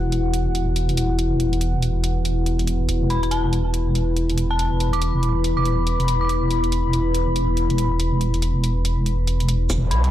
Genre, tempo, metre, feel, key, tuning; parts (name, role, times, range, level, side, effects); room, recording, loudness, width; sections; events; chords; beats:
deep dubstep; 141 BPM; 4/4; swing 61% on 16ths, half-time; A4 = 441 Hz
deep dark ambient pad; sustained chords; 0.0-10.1 s; E4 to B5; -24 LUFS; left 2 dB; chorus, built-in reverb
deep soft wobble bass; bass; 0.0-10.1 s; E1 to B1; -21 LUFS; equal; chorus, tube saturation
electronic hi-hat and shaker; drums; 0.1-10.1 s; -30 LUFS; right 1 dB; small room ambience
dark detuned synth bell; melody; 3.1-6.4, 9.9-10.1 s; A5 to D6; -28 LUFS; right 2 dB; chorus, tremolo, low-pass filter, dub echo
electronic kick drum; drums; 9.7-9.8 s; -27 LUFS; equal; high-pass filter on kick, small room ambience
riser; sound effects; 9.8-10.1 s; -32 LUFS; left 3 dB
light reverb; dark, warm production; -19 LUFS; side -12 dB against mid
0.0-9.7 A section
riser 9.8-10.1
0.0 E5
0.34 0.76 | 1.19 1.61 2.04 2.46 | 2.89 3.31 3.74 4.17 | 4.59 5.02 5.44 5.87 | 6.29 6.72 7.14 7.57 | 8.00 8.42 8.85 9.27 | 9.70